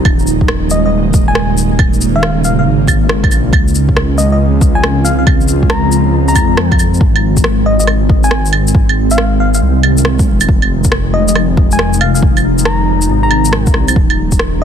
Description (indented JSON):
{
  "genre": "future garage",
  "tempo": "138 BPM",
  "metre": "4/4",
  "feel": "swing 66% on 16ths",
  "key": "unclear",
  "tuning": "A4 = 438 Hz",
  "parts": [
    { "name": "ethereal airy pad", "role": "sustained chords", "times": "0.0-14.6 s", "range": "C3 to F4", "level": "-16 LUFS", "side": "right 1 dB", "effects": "ensemble chorus, built-in reverb, phaser, sidechain pumping" },
    { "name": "swelling detuned saw bass", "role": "bass", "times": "0.0-14.6 s", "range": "Eb1 to F2", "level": "-14 LUFS", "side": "equal", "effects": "tube saturation, sidechain pumping" },
    { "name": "electronic claves, shaker and rim click", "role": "drums", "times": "0.1-14.5 s", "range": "none", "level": "-17 LUFS", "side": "right 1 dB", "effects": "overdrive" },
    { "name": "electronic kick drum", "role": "drums", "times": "0.1-14.4 s", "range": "none", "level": "-12 LUFS", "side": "equal", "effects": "overdrive" },
    { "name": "soft struck synth lead", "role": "melody", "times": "0.7-14.6 s", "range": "Eb5 to Bb5", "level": "-19 LUFS", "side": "left 3 dB", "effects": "chorus, ping-pong delay" }
  ],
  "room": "light reverb",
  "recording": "dense, heavily limited modern master",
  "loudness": "-9 LUFS",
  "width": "side -8 dB against mid",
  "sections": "0.0-7.0 A section; 7.0-14.6 A section",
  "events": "none",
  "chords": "0.1 Eb7sus4; 3.5 Dbmaj7; 7.0 Ab; 10.5 Fm7; 14.0 Eb7sus4",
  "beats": "| 0.05 0.49 0.92 1.36 | 1.79 2.23 2.66 3.10 | 3.53 3.96 4.40 4.83 | 5.27 5.70 6.14 6.57 | 7.01 7.44 7.88 8.31 | 8.75 9.18 9.62 10.05 | 10.49 10.92 11.36 11.79 | 12.23 12.66 13.10 13.53 | 13.96 14.40"
}